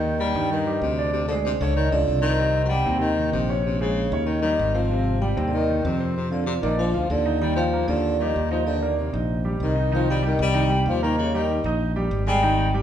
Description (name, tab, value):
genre	jazz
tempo	191 BPM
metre	4/4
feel	straight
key	Eb major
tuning	A4 = 440 Hz
part	vibraphone with soft mallets	melody	0.0-12.7 s	C5 to G5	-27 LUFS	right 1 dB	none
part	breathy baritone saxophone	second line	0.0-12.7 s	C3 to G3	-26 LUFS	left 2 dB	none
part	clear grand piano	accompaniment	0.0-12.8 s	C3 to Eb6	-28 LUFS	right 1 dB	none
part	modern bright fingered electric bass	bass	0.0-12.8 s	Ab1 to G2	-24 LUFS	equal	none
room	wet large studio reverb, RT60 1.2 s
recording	band playing live in one room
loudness	-20 LUFS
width	side -10 dB against mid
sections	0.0-9.9 A section; 9.9-12.8 B section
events	none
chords	0.0 Eb6; 1.1 Csus2; 1.8 Db; 2.4 Cm7; 3.7 Bbm7; 4.3 Eb7; 4.9 Abmaj7; 6.2 F5; 6.8 Bb; 7.4 Eb69; 9.9 Cm7; 11.2 Eb